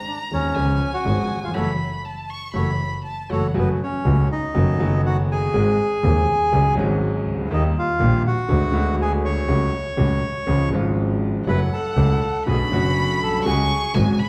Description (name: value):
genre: tango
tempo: 121 BPM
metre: 4/4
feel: rubato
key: F# minor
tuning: A4 = 440 Hz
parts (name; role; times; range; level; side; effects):
- rich violin; second line; 0.0-3.6, 11.5-14.3 s; F#5 to C#6; -30 LUFS; equal; none
- bandoneon; melody; 0.1-13.9 s; B3 to C#6; -27 LUFS; equal; none
- warm upright piano; accompaniment; 0.3-14.2 s; D#1 to G#4; -26 LUFS; equal; none
- warm double bass; bass; 0.3-14.2 s; F#1 to D#2; -24 LUFS; equal; none
room: wet large studio reverb, RT60 1.2 s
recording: heard from further back in the room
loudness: -21 LUFS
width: mono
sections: 0.0-3.6 A section; 3.6-14.3 A section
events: band accent 1.6-3.6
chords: 0.0 G#; 0.6 C#7; 1.6 F#m7; 3.6 F#m; 4.6 B7/F#; 5.5 G#; 6.5 C#sus4; 7.5 D#; 8.5 G#m7b5/D; 9.5 F#m/C#; 10.5 C#; 11.5 F#m7; 12.5 Bm7; 13.5 C#sus4